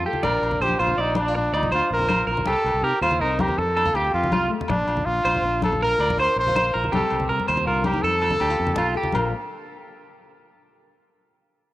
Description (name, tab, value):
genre	highlife guitar band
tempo	108 BPM (dotted quarters)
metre	12/8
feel	straight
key	Bb major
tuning	A4 = 440 Hz
part	nylon-string guitar	accompaniment	0.0-9.3 s	Bb2 to Bb4	-32 LUFS	left 6 dB	cassette tape
part	clean electric guitar	arpeggios	0.0-9.2 s	F4 to D5	-25 LUFS	right 3 dB	harmonic tremolo, cassette tape
part	fingered electric bass	bass	0.0-9.3 s	Bb1 to C3	-28 LUFS	equal	none
part	congas	percussion	0.1-9.3 s	none	-30 LUFS	left 2 dB	none
part	clear trumpet	melody	0.2-9.3 s	D4 to C5	-24 LUFS	equal	none
part	agogo bells	percussion	0.2-9.2 s	none	-32 LUFS	left 3 dB	none
room	moderate lush hall reverb, RT60 3.2 s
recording	home recording on cassette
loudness	-19 LUFS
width	side -15 dB against mid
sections	0.0-9.2 A section; 9.2-11.4 B section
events	none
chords	0.2 Bbadd9; 2.5 Cm; 3.6 F; 4.7 Bbadd9; 6.9 Cm; 8.0 F; 9.2 Bb